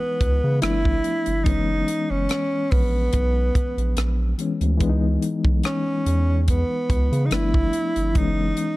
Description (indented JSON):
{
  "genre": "lush 1970s-style soul",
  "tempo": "72 BPM",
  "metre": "4/4",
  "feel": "swing 54% on 16ths",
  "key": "unclear",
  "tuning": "A4 = 439 Hz",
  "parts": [
    { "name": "warm tenor saxophone", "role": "melody", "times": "0.0-8.8 s", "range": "B3 to E4", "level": "-24 LUFS", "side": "right 1 dB", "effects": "none" },
    { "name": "barky reed electric piano", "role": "accompaniment", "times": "0.0-8.8 s", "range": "E3 to D#4", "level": "-27 LUFS", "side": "left 4 dB", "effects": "overdrive, fast tremolo" },
    { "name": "round analog bass", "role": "bass", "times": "0.2-8.5 s", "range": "F#1 to C#3", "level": "-22 LUFS", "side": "equal", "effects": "none" },
    { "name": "tight funk drum kit", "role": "drums", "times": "0.2-8.8 s", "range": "hi-hat, kick drum, rim click", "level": "-23 LUFS", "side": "equal", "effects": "none" }
  ],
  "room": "small room ambience",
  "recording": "dark, warm production",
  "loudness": "-19 LUFS",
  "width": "side -19 dB against mid",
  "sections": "0.0-8.8 A section",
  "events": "none",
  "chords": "0.0 C#m7; 0.6 G9; 1.5 F#7sus4; 4.8 C#m7; 7.3 G9; 8.2 F#7sus4"
}